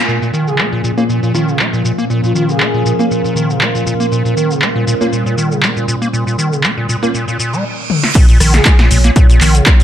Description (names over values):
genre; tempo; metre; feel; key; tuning
acid house; 119 BPM; 4/4; swing 54% on 16ths; Bb dorian; A4 = 440 Hz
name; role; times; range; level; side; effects
warbly tape-like pad; sustained chords; 0.0-9.8 s; Bb2 to Db5; -21 LUFS; left 1 dB; chorus, built-in reverb, sidechain pumping
acid bass, square; riff; 0.0-9.8 s; Bb2 to Bb3; -16 LUFS; equal; overdrive, cassette tape, sidechain pumping, ping-pong delay
deep dark ambient pad; texture; 0.0-7.6 s; Bb4 to C6; -23 LUFS; right 5 dB; chorus, built-in reverb, sidechain pumping
electro analog drum machine; drums; 0.1-9.8 s; crash cymbal, handclaps, hi-hat, rim click, shaker, snare drum, toms; -17 LUFS; left 1 dB; low-pass filter on hats, low-pass filter on perc, low-pass filter on snare, low-pass filter on toms, low-pass filter on cymbals
breathy flute-like synth lead; melody; 0.5-3.0, 8.5-8.7 s; F4 to Ab4; -23 LUFS; left 2 dB; analog chorus, diffuse ambient delay
band-passed chord stab; stabs; 1.0-7.1 s; Bb3 to F4; -21 LUFS; right 2 dB; phaser, wide subtle chorus, ping-pong delay
reverse cymbal; sound effects; 7.4-8.2 s; none; -22 LUFS; right 6 dB; none
electronic kick drum; drums; 8.2-9.8 s; none; -8 LUFS; equal; overdrive
saturated sub bass; bass; 8.4-9.6 s; Bb1; -11 LUFS; equal; tube saturation, sidechain pumping
room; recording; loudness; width
moderate plate reverb, RT60 1.1 s, digital ambience; dreamy mix soaked in reverb; -11 LUFS; side -10 dB against mid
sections
0.1-8.2 A section; 8.2-9.8 B section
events
band accent 0.0; reverse cymbal 7.4-8.2; drum fill 7.9; drop 8.2-9.8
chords
0.1 Bbm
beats
| 0.08 0.59 1.09 1.60 | 2.10 2.60 3.11 3.61 | 4.12 4.62 5.13 5.63 | 6.13 6.64 7.14 7.65 | 8.15 8.66 9.16 9.66